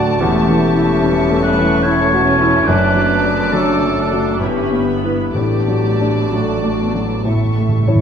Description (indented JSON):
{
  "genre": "classical",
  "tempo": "60-75 BPM",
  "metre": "3/4",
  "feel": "rubato",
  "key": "D major",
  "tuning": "A4 = 440 Hz",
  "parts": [
    { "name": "muted symphonic violin section", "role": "melody", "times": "0.0-7.9 s", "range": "B5 to D6", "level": "-29 LUFS", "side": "left 1 dB", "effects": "none" },
    { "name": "warm grand piano", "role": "melody", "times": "0.0-8.0 s", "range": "D2 to C#5", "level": "-17 LUFS", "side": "equal", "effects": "none" },
    { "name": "clear clarinet", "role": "second line", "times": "0.0-7.3 s", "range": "F#4 to D5", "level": "-19 LUFS", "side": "left 3 dB", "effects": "none" },
    { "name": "muted studio violin section", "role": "second line", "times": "0.0-7.9 s", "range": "D5 to A5", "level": "-25 LUFS", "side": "left 1 dB", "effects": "none" },
    { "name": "muted symphonic viola section", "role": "accompaniment", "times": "0.0-7.7 s", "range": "G3 to D4", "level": "-24 LUFS", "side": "right 2 dB", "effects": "none" },
    { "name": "mellow French horn section", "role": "sustained chords", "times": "0.0-8.0 s", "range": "F#3 to E4", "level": "-22 LUFS", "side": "left 3 dB", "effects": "none" },
    { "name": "muted chamber cello section", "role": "bass", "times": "0.0-8.0 s", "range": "D2 to A2", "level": "-26 LUFS", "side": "right 3 dB", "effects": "none" },
    { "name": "muted symphonic double bass section", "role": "bass", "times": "0.0-8.0 s", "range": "E1 to D2", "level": "-24 LUFS", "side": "right 4 dB", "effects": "none" },
    { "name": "timpani", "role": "percussion", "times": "5.3-8.0 s", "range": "A2", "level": "-20 LUFS", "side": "right 1 dB", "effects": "none" }
  ],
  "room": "wet scoring stage reverb, RT60 1.7 s",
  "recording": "minimal, uncompressed stereo recording",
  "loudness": "-13 LUFS",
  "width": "side -7 dB against mid",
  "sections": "0.0-8.0 A section",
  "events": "timpani fill 7.3-8.0",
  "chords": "0.2 A7/E; 2.7 D/F#; 4.4 Em/G; 5.3 D/A; 7.3 A"
}